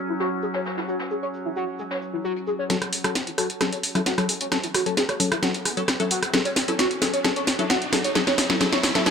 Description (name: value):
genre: driving peak-time techno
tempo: 132 BPM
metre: 4/4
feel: straight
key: F# minor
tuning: A4 = 440 Hz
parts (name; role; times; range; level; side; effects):
- overtone-sweeping drone; drone; 0.0-2.7 s; F#3 to C#4; -33 LUFS; equal; chorus, built-in reverb
- overdriven synth lead; riff; 0.1-9.1 s; E4 to C#5; -28 LUFS; equal; phaser, wide subtle chorus, ping-pong delay
- jazz brush drum kit; drums; 0.2-2.6 s; hi-hat, shaker, snare drum; -35 LUFS; left 1 dB; high-pass filter on hats, low-pass filter on hats, high-pass filter on snare, low-pass filter on snare, high-pass filter on perc, low-pass filter on perc, high-pass filter on room, low-pass filter on room
- wavetable chord stab; stabs; 2.7-9.1 s; F#3 to A4; -27 LUFS; left 3 dB; ping-pong delay
- techno drum kit; drums; 2.7-9.1 s; hi-hat, rim click, snare drum; -23 LUFS; equal; none
- riser; sound effects; 4.4-9.1 s; none; -32 LUFS; right 1 dB; none
room: moderate lush hall reverb, RT60 1.9 s, small room ambience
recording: none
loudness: -21 LUFS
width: side -6 dB against mid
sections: 0.0-2.7 A section; 2.7-9.1 B section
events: filter sweep on analog synth lead 0.0-2.7, 2.7-9.1; build-up 2.7-9.1; drum fill 2.7-9.1; riser 4.4-9.1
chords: 0.0 F#5; 2.7 F#m